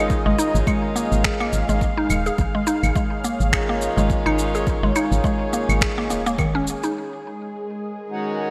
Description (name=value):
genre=organic downtempo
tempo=105 BPM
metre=4/4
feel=swing 57% on 16ths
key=unclear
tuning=A4 = 440 Hz
part: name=pedal harmonium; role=accompaniment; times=0.0-8.5 s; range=D#3 to F#4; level=-29 LUFS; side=equal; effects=vintage 12-bit sampler grit, sidechain pumping, delay
part: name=warm analog pad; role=sustained chords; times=0.0-8.5 s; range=G#3 to E#5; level=-30 LUFS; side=equal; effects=chorus, sidechain pumping
part: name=mallet-like synth pluck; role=arpeggios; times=0.0-6.9 s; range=D#3 to G#4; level=-26 LUFS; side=equal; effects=chorus, delay
part: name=woody FM bass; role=bass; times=0.0-6.7 s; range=D#1 to G#1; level=-26 LUFS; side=equal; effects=none
part: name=electronic kick drum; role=drums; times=0.1-6.5 s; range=none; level=-28 LUFS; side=equal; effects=overdrive
part: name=electronic shaker, claves and finger snaps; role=drums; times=0.1-6.9 s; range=none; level=-29 LUFS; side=equal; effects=overdrive, low-pass filter on perc, low-pass filter on snare, gated reverb
room=moderate lush hall reverb, RT60 1.9 s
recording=bright 1980s-style digital production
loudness=-21 LUFS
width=mono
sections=0.0-7.0 A section; 7.0-8.5 B section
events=none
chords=0.0 C#6; 7.0 G#m7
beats=| 0.10 0.67 1.24 1.81 | 2.39 2.96 3.53 4.10 | 4.67 5.24 5.82 6.39 | 6.96 7.53 8.10